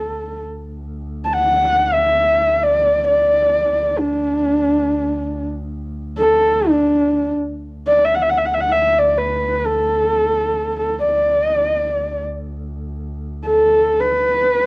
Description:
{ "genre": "mongolian traditional, Mongolian folk", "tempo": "free time", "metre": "none", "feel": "none", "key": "D gong mode", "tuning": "A4 = 439 Hz", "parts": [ { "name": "dark horsehead fiddle", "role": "melody", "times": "0.0-14.7 s", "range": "D4 to A5", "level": "-15 LUFS", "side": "equal", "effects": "cassette tape" }, { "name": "dark double bass", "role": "drone", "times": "0.0-14.7 s", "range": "D2", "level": "-29 LUFS", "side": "equal", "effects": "cassette tape" } ], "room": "moderate spring reverb, RT60 1.3 s, studio reverb", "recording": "home recording on cassette", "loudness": "-14 LUFS", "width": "side -25 dB against mid", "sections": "0.0-7.4 A section; 7.4-14.7 A section", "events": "none", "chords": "none", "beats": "free time" }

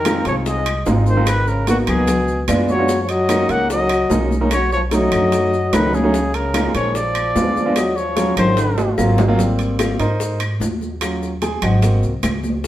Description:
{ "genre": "Afro-Cuban jazz", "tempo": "148 BPM", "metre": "4/4", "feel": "straight", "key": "Db major, Ab major from 9.4 s", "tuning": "A4 = 440 Hz", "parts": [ { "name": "breathy trumpet", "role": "melody", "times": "0.0-8.9 s", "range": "Gb4 to Gb5", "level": "-22 LUFS", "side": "equal", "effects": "none" }, { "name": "growling trombone", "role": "second line", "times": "0.0-8.9 s", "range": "Bb2 to Bb3", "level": "-22 LUFS", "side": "left 2 dB", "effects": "none" }, { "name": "warm concert grand piano", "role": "accompaniment", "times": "0.0-12.1 s", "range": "Gb3 to Ab5", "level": "-20 LUFS", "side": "right 1 dB", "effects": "none" }, { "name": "upright bass", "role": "bass", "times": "0.0-12.7 s", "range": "Ab1 to Ab2", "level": "-21 LUFS", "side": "equal", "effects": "none" }, { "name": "bongos", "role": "percussion", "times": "0.1-12.7 s", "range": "none", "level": "-28 LUFS", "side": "left 3 dB", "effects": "none" }, { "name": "claves", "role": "percussion", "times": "0.1-12.4 s", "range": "none", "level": "-32 LUFS", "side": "left 2 dB", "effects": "none" }, { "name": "congas", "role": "percussion", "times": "0.1-12.7 s", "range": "none", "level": "-26 LUFS", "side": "left 1 dB", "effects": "none" }, { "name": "maracas", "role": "percussion", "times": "0.1-12.7 s", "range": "none", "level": "-37 LUFS", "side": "left 4 dB", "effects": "none" }, { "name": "timbales", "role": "percussion", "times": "0.1-12.4 s", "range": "none", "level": "-28 LUFS", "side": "right 4 dB", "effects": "none" } ], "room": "wet stone room reverb, RT60 1.1 s", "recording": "band playing live in one room", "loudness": "-15 LUFS", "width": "side -13 dB against mid", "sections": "0.0-9.4 A section; 9.4-12.7 B section", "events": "drum fill 8.6-9.4; grand piano solo 9.4-12.7", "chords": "0.0 Fm7; 1.3 Abm9; 2.1 Db7b9; 2.9 Gb69; 4.5 Cb9; 6.1 Db69; 6.9 Bb7b9; 7.8 Ebm11; 8.6 Ab13; 9.4 Abmaj9; 11.0 Ebm9; 11.8 Ab7", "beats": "0.06 0.46 0.86 | 1.27 1.68 2.08 2.48 | 2.89 3.29 3.70 4.11 | 4.51 4.92 5.32 5.73 | 6.14 6.54 6.95 7.36 | 7.76 8.17 8.57 8.98 | 9.39 9.79 10.20 10.61 | 11.01 11.42 11.83 12.23 | 12.64" }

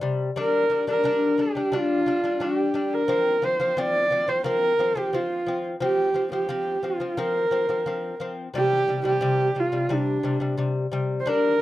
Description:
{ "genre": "mongolian traditional, Mongolian folk", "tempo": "88 BPM", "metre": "4/4", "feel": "straight", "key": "F zhi mode", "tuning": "A4 = 439 Hz", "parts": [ { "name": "lute", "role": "arpeggios", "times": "0.0-11.5 s", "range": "C3 to D4", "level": "-26 LUFS", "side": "left 3 dB", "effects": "none" }, { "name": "dark horsehead fiddle", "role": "melody", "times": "0.4-11.6 s", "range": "D4 to D5", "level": "-23 LUFS", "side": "right 1 dB", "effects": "none" } ], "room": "light reverb", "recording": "dry, close 1970s-style studio recording", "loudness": "-21 LUFS", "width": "side -15 dB against mid", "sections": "0.0-11.6 A section", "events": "none", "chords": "0.4 G5; 3.1 F5; 8.5 C5", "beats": "| 0.36 1.04 1.73 2.41 | 3.09 3.77 4.45 5.13 | 5.81 6.49 7.18 7.86 | 8.54 9.22 9.90 10.59 | 11.27" }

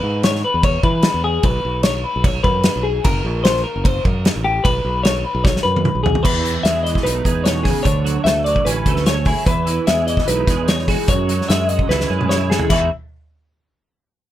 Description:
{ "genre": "math rock and midwest emo", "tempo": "149 BPM", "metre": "4/4", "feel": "straight", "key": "E major", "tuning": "A4 = 440 Hz", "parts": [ { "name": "twelve-string electric guitar", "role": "arpeggios", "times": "0.0-12.9 s", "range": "E4 to E5", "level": "-20 LUFS", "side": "left 3 dB", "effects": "warbly pitch drift" }, { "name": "fingered electric bass", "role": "bass", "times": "0.0-12.9 s", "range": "F#1 to E3", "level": "-21 LUFS", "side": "equal", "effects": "none" }, { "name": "loose indie drum kit", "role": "drums", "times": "0.2-12.8 s", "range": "crash cymbal, hi-hat, kick drum, snare drum, toms", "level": "-19 LUFS", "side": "equal", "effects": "none" }, { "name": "twelve-string electric guitar", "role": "accompaniment", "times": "6.2-12.9 s", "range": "E2 to A4", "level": "-23 LUFS", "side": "right 10 dB", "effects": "ensemble chorus" } ], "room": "little or no reverb", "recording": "none", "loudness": "-15 LUFS", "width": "side -12 dB against mid", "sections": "0.0-6.3 A section; 6.3-12.7 B section; 12.7-14.3 C section", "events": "drum fill 5.5-6.3, 11.9-12.7", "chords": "0.0 E6; 1.4 Bsus2; 3.0 F#; 4.7 Bsus2; 6.3 Emaj7; 7.9 Dmaj9; 9.5 Emaj9; 11.1 F#7sus2; 12.7 E", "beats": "0.24 0.64 1.04 | 1.44 1.85 2.25 2.65 | 3.05 3.45 3.85 4.25 | 4.65 5.05 5.45 5.85 | 6.25 6.66 7.06 7.46 | 7.86 8.26 8.67 9.07 | 9.47 9.87 10.28 10.68 | 11.08 11.49 11.89 12.29 | 12.70" }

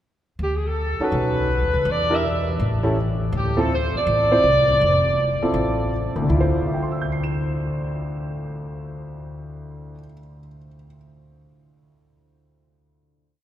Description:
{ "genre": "jazz, big band swing", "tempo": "162 BPM", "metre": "4/4", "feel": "swing 66% on 8ths", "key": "D minor", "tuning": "A4 = 441 Hz", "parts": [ { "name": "dark saxophone section", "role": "melody", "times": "0.4-5.9 s", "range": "G4 to E5", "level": "-22 LUFS", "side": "equal", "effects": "none" }, { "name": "upright bass", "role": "bass", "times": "0.4-10.0 s", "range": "F1 to E2", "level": "-24 LUFS", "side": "equal", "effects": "none" }, { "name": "clear grand piano", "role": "accompaniment", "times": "1.0-11.0 s", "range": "D2 to E7", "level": "-25 LUFS", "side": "equal", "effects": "none" } ], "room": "wet cathedral reverb, RT60 6.3 s", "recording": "recorded in a church or concert hall", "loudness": "-19 LUFS", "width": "side -11 dB against mid", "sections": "0.4-6.3 A section; 6.3-9.3 final chord", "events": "none", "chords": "0.4 D5; 1.1 B7; 1.9 Em7b5; 2.6 A7; 3.3 Dm9", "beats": "| 0.39 0.76 1.12 1.49 | 1.86 2.23 2.59 2.96 | 3.33 3.70 4.07 4.44 | 4.81 5.18 5.55 5.92 | 6.29 6.66 7.03 7.40 | 7.78 8.15 8.52 8.89" }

